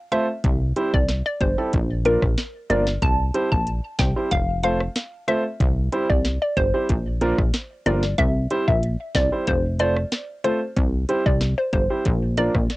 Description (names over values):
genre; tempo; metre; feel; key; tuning
dancehall; 93 BPM; 4/4; straight; C mixolydian; A4 = 440 Hz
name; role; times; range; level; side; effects
hollow square pluck; melody; 0.1-12.5 s; Bb4 to A5; -25 LUFS; left 1 dB; chorus, phaser, cassette tape, tape echo
warm baby grand piano; accompaniment; 0.1-12.5 s; F3 to C5; -24 LUFS; right 2 dB; sidechain pumping, cassette tape
afro-pop drum kit; drums; 0.1-12.8 s; hi-hat, kick drum, rim click, snare drum; -24 LUFS; equal; vintage 12-bit sampler grit, cassette tape
plucky analog bass; bass; 0.4-12.7 s; F1 to C2; -22 LUFS; equal; none
room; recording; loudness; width
little or no reverb; home recording on cassette; -19 LUFS; side -19 dB against mid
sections
0.0-12.8 A section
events
none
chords
0.4 C; 1.7 Bb; 3.0 C; 4.3 F; 5.6 C; 6.9 Bb; 8.2 C; 9.5 F; 10.8 C; 12.1 Bb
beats
| 0.44 1.09 1.73 2.38 | 3.02 3.67 4.31 4.96 | 5.60 6.25 6.89 7.54 | 8.18 8.83 9.47 10.12 | 10.76 11.41 12.05 12.70